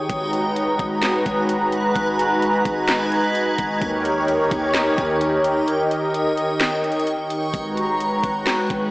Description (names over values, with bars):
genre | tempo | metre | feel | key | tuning
hip hop, atmospheric cloud-rap | 129 BPM | 4/4 | half-time | G# minor | A4 = 440 Hz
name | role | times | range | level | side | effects
warm analog pad | sustained chords | 0.0-8.9 s | D#3 to A#5 | -20 LUFS | equal | chorus, sidechain pumping
backwards swelling texture | texture | 0.0-8.9 s | B4 to G#6 | -26 LUFS | equal | built-in reverb
warm 808-style bass | bass | 0.1-8.9 s | G#1 to D#2 | -33 LUFS | equal | none
trap drum kit | drums | 0.1-8.8 s | hi-hat, kick drum, snare drum | -26 LUFS | equal | vintage 12-bit sampler grit
room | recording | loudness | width
wet church reverb, RT60 2.4 s | dreamy mix soaked in reverb, small speaker sound | -18 LUFS | side -20 dB against mid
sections
0.1-8.9 A section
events
kick muted 5.7-7.5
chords
0.1 G#m7; 3.8 D#7; 7.5 G#m7